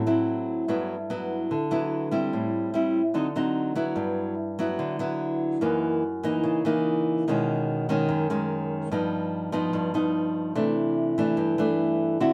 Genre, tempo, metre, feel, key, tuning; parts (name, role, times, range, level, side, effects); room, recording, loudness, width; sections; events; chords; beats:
bossa nova; 146 BPM; 4/4; straight; A4 = 441 Hz
nylon-string guitar; solo; 0.0-12.3 s; F#2 to F#4; -26 LUFS; equal
moderate studio ambience, RT60 0.5 s; band playing live in one room; -26 LUFS; mono
0.0-4.0 A section; 4.0-12.3 B section
0.0 D9 (rootless); 0.7 G6; 2.3 Am7; 3.1 D7b9; 4.0 G6; 5.6 F#6; 7.3 B69; 8.9 Gaug7; 10.6 C69
0.26 | 0.67 1.08 1.49 1.90 | 2.31 2.72 3.14 3.55 | 3.96 4.37 4.78 5.20 | 5.61 6.02 6.43 6.84 | 7.26 7.67 8.08 8.49 | 8.90 9.32 9.73 10.14 | 10.55 10.97 11.38 11.79 | 12.20